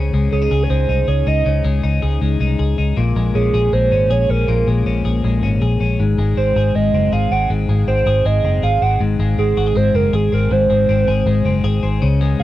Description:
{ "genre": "jangly indie pop", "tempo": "159 BPM", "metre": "4/4", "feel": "straight", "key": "unclear", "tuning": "A4 = 439 Hz", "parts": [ { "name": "twelve-string electric guitar", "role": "arpeggios", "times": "0.0-12.4 s", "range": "Ab2 to Ab4", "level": "-20 LUFS", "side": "left 5 dB", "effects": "cassette tape, analog delay" }, { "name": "vintage muted fingered electric bass", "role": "bass", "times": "0.0-12.4 s", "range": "Gb1 to Db2", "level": "-17 LUFS", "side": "equal", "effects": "none" }, { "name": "warbly nostalgic lead", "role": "melody", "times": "0.3-12.4 s", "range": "Ab4 to Gb5", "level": "-20 LUFS", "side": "right 4 dB", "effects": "chorus, cassette tape, analog delay" } ], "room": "moderate booth ambience, RT60 0.2 s", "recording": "home recording on cassette", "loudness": "-14 LUFS", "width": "side -14 dB against mid", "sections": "0.0-12.0 A section", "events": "none", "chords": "0.0 Dbsus2; 3.0 Bbm7; 6.0 Ab", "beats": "0.32 0.70 1.08 | 1.46 1.84 2.21 2.59 | 2.97 3.35 3.73 4.10 | 4.48 4.86 5.24 5.62 | 5.99 6.37 6.75 7.12 | 7.50 7.88 8.26 8.63 | 9.01 9.39 9.76 10.14 | 10.52 10.89 11.27 11.65 | 12.02 12.40" }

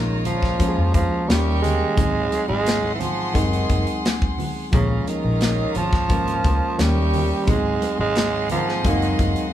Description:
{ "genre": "lush 1970s-style soul", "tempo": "87 BPM", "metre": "4/4", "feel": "straight", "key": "unclear", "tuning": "A4 = 440 Hz", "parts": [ { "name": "growling tenor saxophone", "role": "melody", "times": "0.0-9.5 s", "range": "Db3 to Ab3", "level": "-24 LUFS", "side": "right 3 dB", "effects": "none" }, { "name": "warm studio violin section", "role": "second line", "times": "0.0-9.5 s", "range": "F4 to Db6", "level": "-29 LUFS", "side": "equal", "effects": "none" }, { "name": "overdriven reed electric piano", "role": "accompaniment", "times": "0.0-9.5 s", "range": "Eb3 to F5", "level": "-26 LUFS", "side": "left 1 dB", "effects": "none" }, { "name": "vintage muted fingered electric bass", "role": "bass", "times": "0.0-9.3 s", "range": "Gb1 to F2", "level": "-24 LUFS", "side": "equal", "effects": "none" }, { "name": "modern studio drum kit", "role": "drums", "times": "0.3-9.5 s", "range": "hi-hat, kick drum, snare drum", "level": "-23 LUFS", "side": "left 1 dB", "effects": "none" }, { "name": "congas", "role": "percussion", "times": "0.3-9.3 s", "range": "none", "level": "-32 LUFS", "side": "right 1 dB", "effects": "none" }, { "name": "electric guitar through a small old amp", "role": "riff", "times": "8.5-9.5 s", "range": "Gb3 to Bb4", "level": "-29 LUFS", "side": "right 3 dB", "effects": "none" } ], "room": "moderate studio reverb, RT60 0.6 s", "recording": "band playing live in one room", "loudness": "-18 LUFS", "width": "side -11 dB against mid", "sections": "0.0-9.5 A section", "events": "none", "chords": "0.0 Bbm7; 1.3 Eb7; 2.0 Ab7; 4.7 Bbm7; 6.8 Eb7; 7.5 Ab7", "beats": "0.60 1.29 | 1.98 2.66 3.35 4.04 | 4.73 5.41 6.10 6.79 | 7.47 8.16 8.85" }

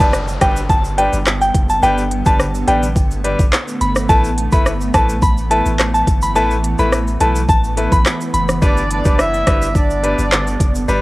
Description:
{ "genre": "dancehall", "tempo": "106 BPM", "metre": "4/4", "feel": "straight", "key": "unclear", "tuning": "A4 = 440 Hz", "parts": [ { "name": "soft synth bell", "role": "melody", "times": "0.0-8.4 s", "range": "G5 to B5", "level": "-18 LUFS", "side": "equal", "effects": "chorus, cassette tape, analog delay" }, { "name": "bright baby grand piano", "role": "accompaniment", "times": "0.0-11.0 s", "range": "G3 to B4", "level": "-22 LUFS", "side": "left 2 dB", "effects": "sidechain pumping, cassette tape" }, { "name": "granular cloud pad", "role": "sustained chords", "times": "0.8-11.0 s", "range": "D3 to B3", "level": "-25 LUFS", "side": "right 1 dB", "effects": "built-in reverb, sidechain pumping, cassette tape" }, { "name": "punchy sub bass", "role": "bass", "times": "0.0-11.0 s", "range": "F#1 to B1", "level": "-20 LUFS", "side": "equal", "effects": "none" }, { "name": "island pop drum kit", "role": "drums", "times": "0.0-11.0 s", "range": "handclaps, hi-hat, kick drum, rim click, shaker", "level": "-16 LUFS", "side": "equal", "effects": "overdrive" }, { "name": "downlifter", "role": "sound effects", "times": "0.0-4.1 s", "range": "none", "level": "-32 LUFS", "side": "equal", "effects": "none" }, { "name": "tube shaker", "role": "percussion", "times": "0.1-11.0 s", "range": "none", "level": "-35 LUFS", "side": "right 3 dB", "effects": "none" }, { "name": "warm horn section", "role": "second line", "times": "8.6-10.9 s", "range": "D4 to E5", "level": "-19 LUFS", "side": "right 1 dB", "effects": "cassette tape, analog delay" } ], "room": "light reverb, digital ambience", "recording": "home recording on cassette", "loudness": "-13 LUFS", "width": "side -20 dB against mid", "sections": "0.0-11.0 A section", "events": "none", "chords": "0.0 G; 4.1 Asus2; 8.6 G", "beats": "0.13 0.70 1.26 | 1.83 2.40 2.96 3.53 | 4.09 4.66 5.23 5.79 | 6.36 6.92 7.49 8.06 | 8.62 9.19 9.75 10.32 | 10.89" }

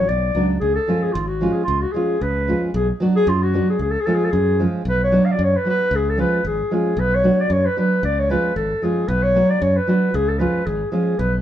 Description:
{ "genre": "balkan folk, Balkan wedding band", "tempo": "113 BPM", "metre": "2/4", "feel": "swing 55% on 16ths", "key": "C# phrygian dominant", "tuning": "A4 = 442 Hz", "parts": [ { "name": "mellow clarinet", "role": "melody", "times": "0.0-11.3 s", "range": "E#4 to E#5", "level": "-20 LUFS", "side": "left 1 dB", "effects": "none" }, { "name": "nylon-string guitar", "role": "accompaniment", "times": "0.0-11.1 s", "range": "E#3 to F#4", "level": "-21 LUFS", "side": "right 2 dB", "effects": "none" }, { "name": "modern bright fingered electric bass", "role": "bass", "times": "0.0-11.4 s", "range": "G#1 to F#2", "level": "-22 LUFS", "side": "equal", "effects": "none" } ], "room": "moderate stone room reverb, RT60 1.0 s", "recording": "band playing live in one room", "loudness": "-17 LUFS", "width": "side -11 dB against mid", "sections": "0.0-4.9 A section; 4.9-11.4 B section", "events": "none", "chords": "0.0 Bm; 0.6 C#; 2.7 Bm; 3.8 C#; 4.9 Bm; 5.9 C#; 7.0 Bm; 8.0 C#; 9.1 Bm; 10.1 C#", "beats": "0.08 | 0.61 1.15 | 1.68 2.21 | 2.74 3.27 | 3.80 4.33 | 4.86 5.39 | 5.92 6.45 | 6.98 7.51 | 8.03 8.56 | 9.09 9.62 | 10.14 10.67 | 11.19" }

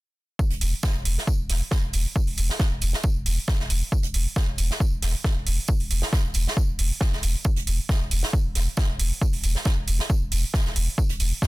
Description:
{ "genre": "driving peak-time techno", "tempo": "136 BPM", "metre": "4/4", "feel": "straight", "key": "unclear", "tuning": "A4 = 440 Hz", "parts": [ { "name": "electronic kick drum", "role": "drums", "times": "0.4-11.5 s", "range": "none", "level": "-24 LUFS", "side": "equal", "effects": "none" }, { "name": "unplugged drum kit", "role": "drums", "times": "0.4-11.5 s", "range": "hi-hat, snare drum, tambourine", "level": "-33 LUFS", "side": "right 2 dB", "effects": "sidechain pumping on hats, high-pass filter on hats, high-pass filter on snare, sidechain pumping on perc, high-pass filter on perc, high-pass filter on room" }, { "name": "warm sub bass", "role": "bass", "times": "0.5-11.3 s", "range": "E1", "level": "-26 LUFS", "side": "equal", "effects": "overdrive, sidechain pumping, low-pass filter" }, { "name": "electronic hi-hat", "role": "drums", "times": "0.6-11.3 s", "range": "none", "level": "-30 LUFS", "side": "right 4 dB", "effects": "sidechain pumping on hats" } ], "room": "little or no reverb", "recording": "dense, heavily limited modern master", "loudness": "-22 LUFS", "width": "side -20 dB against mid", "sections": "0.4-11.5 A section", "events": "none", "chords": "none", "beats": "| 0.39 0.83 1.27 1.72 | 2.16 2.60 3.04 3.48 | 3.92 4.36 4.80 5.25 | 5.69 6.13 6.57 7.01 | 7.45 7.89 8.33 8.77 | 9.21 9.66 10.10 10.54 | 10.98 11.42" }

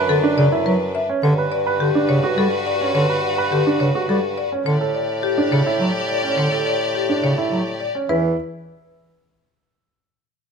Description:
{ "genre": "classical, minimalist pattern music", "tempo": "105 BPM", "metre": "3/4", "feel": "straight", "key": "E dorian", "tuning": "A4 = 440 Hz", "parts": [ { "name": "clear chamber violin section", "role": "sustained chords", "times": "0.0-7.9 s", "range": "D4 to D5", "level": "-26 LUFS", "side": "left 2 dB", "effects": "none" }, { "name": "warm baby grand piano", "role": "arpeggios", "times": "0.0-8.4 s", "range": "C#4 to B4", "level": "-22 LUFS", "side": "right 6 dB", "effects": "none" }, { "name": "warm bassoon", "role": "bass", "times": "0.0-8.4 s", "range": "E2 to A2", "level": "-26 LUFS", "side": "right 1 dB", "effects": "none" }, { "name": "marimba with medium hard mallets", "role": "melody", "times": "0.1-8.4 s", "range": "G4 to E5", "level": "-23 LUFS", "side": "left 6 dB", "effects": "none" }, { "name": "warm bass clarinet", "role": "accompaniment", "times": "0.1-8.4 s", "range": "C#3 to G3", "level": "-21 LUFS", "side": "right 1 dB", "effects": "none" } ], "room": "moderate recital hall reverb, RT60 1.4 s", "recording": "close, detailed microphones", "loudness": "-17 LUFS", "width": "side -6 dB against mid", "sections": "0.0-8.1 A section; 8.1-9.8 B section", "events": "none", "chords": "0.0 D69/F#; 1.2 Gmaj7; 4.7 A7sus4; 8.1 E5", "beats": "0.09 0.66 | 1.24 1.81 2.38 | 2.95 3.52 4.09 | 4.66 5.24 5.81 | 6.38 6.95 7.52 | 8.09" }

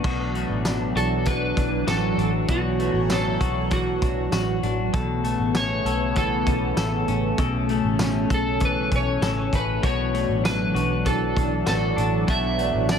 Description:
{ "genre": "dream pop", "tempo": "98 BPM", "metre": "4/4", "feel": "straight", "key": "unclear", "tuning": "A4 = 439 Hz", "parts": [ { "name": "warm analog pad", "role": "sustained chords", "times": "0.0-13.0 s", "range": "C#3 to C#5", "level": "-27 LUFS", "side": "right 1 dB", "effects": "chorus, phaser" }, { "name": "clean electric guitar", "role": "arpeggios", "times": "0.0-13.0 s", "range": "B2 to A4", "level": "-28 LUFS", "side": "left 6 dB", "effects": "wide subtle chorus, dub echo" }, { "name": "vintage muted fingered electric bass", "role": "bass", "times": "0.0-13.0 s", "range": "A1 to B1", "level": "-27 LUFS", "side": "equal", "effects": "none" }, { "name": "loose indie drum kit", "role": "drums", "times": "0.0-13.0 s", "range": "crash cymbal, hi-hat, kick drum, snare drum, tambourine", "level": "-28 LUFS", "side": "equal", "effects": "dub echo" }, { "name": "electric slide guitar", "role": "melody", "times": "1.0-13.0 s", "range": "F#4 to E5", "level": "-27 LUFS", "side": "right 1 dB", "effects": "dub echo" } ], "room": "moderate spring reverb, RT60 1.9 s, small room ambience", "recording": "echo-heavy mix", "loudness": "-20 LUFS", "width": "side -7 dB against mid", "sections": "0.0-13.0 A section", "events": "none", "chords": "0.0 Dadd9; 4.9 Aadd9; 9.8 Dadd9", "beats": "| 0.04 0.65 1.27 1.88 | 2.49 3.10 3.72 4.33 | 4.94 5.55 6.17 6.78 | 7.39 8.00 8.61 9.23 | 9.84 10.45 11.06 11.68 | 12.29 12.90" }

